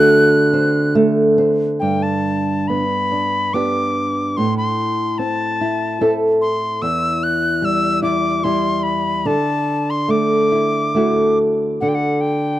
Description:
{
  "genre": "celtic folk, Celtic slow air",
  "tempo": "72 BPM",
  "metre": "3/4",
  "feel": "uneven beats, rubato",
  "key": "G major",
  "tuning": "A4 = 440 Hz",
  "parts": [
    { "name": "bright reedy mid whistle", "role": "melody", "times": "0.0-12.6 s", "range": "F#5 to F#6", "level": "-20 LUFS", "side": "left 1 dB", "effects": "none" },
    { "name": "nylon-string guitar", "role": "accompaniment", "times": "0.0-12.6 s", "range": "E2 to A4", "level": "-16 LUFS", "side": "right 1 dB", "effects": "none" }
  ],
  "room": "small room ambience",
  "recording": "dry, close 1970s-style studio recording",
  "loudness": "-15 LUFS",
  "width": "side -14 dB against mid",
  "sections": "0.0-1.8 A section; 1.8-12.6 B section",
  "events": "none",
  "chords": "0.0 D7; 1.8 G; 4.4 Am; 6.8 Em; 9.3 Dadd9; 11.8 D",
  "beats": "0.11 0.94 | 1.80 2.67 3.52 | 4.36 5.20 6.02 | 6.83 7.63 8.44 | 9.27 10.10 10.95 | 11.81"
}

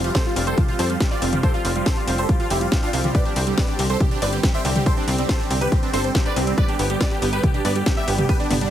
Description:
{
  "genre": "uplifting trance",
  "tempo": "140 BPM",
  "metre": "4/4",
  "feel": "straight",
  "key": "unclear",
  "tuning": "A4 = 440 Hz",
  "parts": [
    { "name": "supersaw chords", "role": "melody", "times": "0.0-8.7 s", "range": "C4 to E5", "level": "-26 LUFS", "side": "right 1 dB", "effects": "phaser, sidechain pumping, digital delay" },
    { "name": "bright grand piano", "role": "second line", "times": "0.0-8.7 s", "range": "C4 to E5", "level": "-31 LUFS", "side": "equal", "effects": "sidechain pumping, ping-pong delay" },
    { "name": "lush unison pad", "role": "sustained chords", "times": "0.0-8.7 s", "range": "D3 to G4", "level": "-29 LUFS", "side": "left 1 dB", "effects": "chorus, sidechain pumping" },
    { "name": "analog pluck", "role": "arpeggios", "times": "0.0-8.7 s", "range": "G3 to G4", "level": "-29 LUFS", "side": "right 4 dB", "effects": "chorus, sidechain pumping, ping-pong delay" },
    { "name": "tight sequencer bass", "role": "bass", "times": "0.0-8.7 s", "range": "F1 to G2", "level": "-24 LUFS", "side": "equal", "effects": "sidechain pumping" },
    { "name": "house drum kit", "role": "drums", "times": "0.0-8.7 s", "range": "hi-hat, snare drum, toms", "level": "-27 LUFS", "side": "left 1 dB", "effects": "sidechain pumping on hats, sidechain pumping on cymbals, sidechain pumping on toms" },
    { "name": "electronic kick drum", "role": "drums", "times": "0.1-8.4 s", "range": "none", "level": "-20 LUFS", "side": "equal", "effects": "none" }
  ],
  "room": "little or no reverb",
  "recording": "heavily compressed radio sound",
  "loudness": "-18 LUFS",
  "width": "side -11 dB against mid",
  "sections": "0.0-8.7 A section",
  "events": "none",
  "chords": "0.0 Fsus2; 3.1 Csus2; 6.6 G",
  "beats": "0.15 0.58 1.01 | 1.43 1.86 2.29 2.72 | 3.15 3.58 4.01 4.43 | 4.86 5.29 5.72 6.15 | 6.58 7.01 7.43 7.86 | 8.29"
}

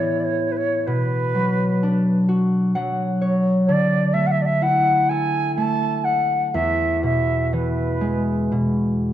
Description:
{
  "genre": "celtic folk, Celtic slow air",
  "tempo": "59-64 BPM",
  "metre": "3/4",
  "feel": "rubato",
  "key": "unclear",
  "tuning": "A4 = 440 Hz",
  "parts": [
    { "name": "bright wooden flute", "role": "melody", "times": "0.0-8.5 s", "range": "B4 to A5", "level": "-21 LUFS", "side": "right 1 dB", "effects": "none" },
    { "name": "concert harp", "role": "accompaniment", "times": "0.0-9.1 s", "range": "E2 to F#5", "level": "-20 LUFS", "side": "equal", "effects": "none" }
  ],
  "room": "moderate recital hall reverb, RT60 1.6 s",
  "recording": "dark, warm production",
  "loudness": "-18 LUFS",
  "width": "side -11 dB against mid",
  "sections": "0.0-9.1 A section",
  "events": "harp fill 2.3-3.7",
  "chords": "0.0 Asus2; 0.9 Bm; 3.7 Dsus2; 6.5 E",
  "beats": "| 0.86 1.80 2.74 | 3.68 4.61 5.56 | 6.53 7.51 8.51"
}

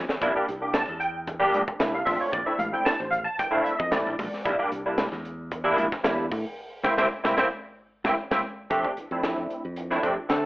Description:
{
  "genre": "electric jazz fusion",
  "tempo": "113 BPM",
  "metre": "4/4",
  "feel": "straight",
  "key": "unclear",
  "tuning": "A4 = 440 Hz",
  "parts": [
    { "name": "barky tine electric piano", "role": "accompaniment", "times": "0.0-10.5 s", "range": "G3 to A5", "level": "-24 LUFS", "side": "equal", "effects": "overdrive, ensemble chorus" },
    { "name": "modern bright fingered electric bass", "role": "bass", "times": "0.0-10.4 s", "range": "A1 to D3", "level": "-34 LUFS", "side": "equal", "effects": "none" },
    { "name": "crisp fusion drum kit", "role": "drums", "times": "0.1-10.4 s", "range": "hi-hat, kick drum, snare drum", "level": "-30 LUFS", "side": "equal", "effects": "none" },
    { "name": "congas", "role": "percussion", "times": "0.1-8.4 s", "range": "none", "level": "-39 LUFS", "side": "left 1 dB", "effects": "none" }
  ],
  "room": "moderate studio reverb, RT60 0.7 s",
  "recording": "telephone sound",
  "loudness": "-24 LUFS",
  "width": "side -18 dB against mid",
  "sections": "0.0-8.7 A section; 8.7-10.5 B section",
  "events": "drum fill 0.0, 7.6-8.7; band accent 6.6-8.7; tine electric piano fill 7.6-8.7",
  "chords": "0.2 C9; 2.1 Bbmaj7; 4.5 C9; 8.7 F69",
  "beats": "| 0.22 0.75 1.28 1.81 | 2.34 2.87 3.40 3.93 | 4.46 4.99 5.52 6.05 | 6.58 7.11 7.64 8.18 | 8.71 9.24 9.77 10.30"
}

